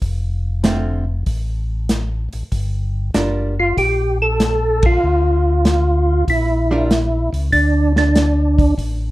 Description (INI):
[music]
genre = soul jazz organ trio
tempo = 96 BPM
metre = 4/4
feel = swing 69% on 8ths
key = unclear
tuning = A4 = 439 Hz
[part]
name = mellow tonewheel organ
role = bass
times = 0.0-9.1 s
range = F1 to D2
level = -18 LUFS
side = equal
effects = slow rotary speaker
[part]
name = warm soul drum kit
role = drums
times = 0.0-9.0 s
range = hi-hat, kick drum, ride cymbal, snare drum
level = -19 LUFS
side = equal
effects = none
[part]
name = archtop guitar, miked and amplified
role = accompaniment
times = 0.6-6.9 s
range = D3 to Bb4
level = -21 LUFS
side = right 2 dB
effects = none
[part]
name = percussive tonewheel organ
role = melody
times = 3.6-8.7 s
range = D4 to A4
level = -17 LUFS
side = right 1 dB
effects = slow rotary speaker, chorus vibrato, plate reverb
[sound]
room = light reverb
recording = dark, warm production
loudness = -15 LUFS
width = side -17 dB against mid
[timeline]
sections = 0.0-9.1 A section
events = band accent 4.7-5.0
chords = 0.0 Dm7; 2.5 Gm7; 7.5 D5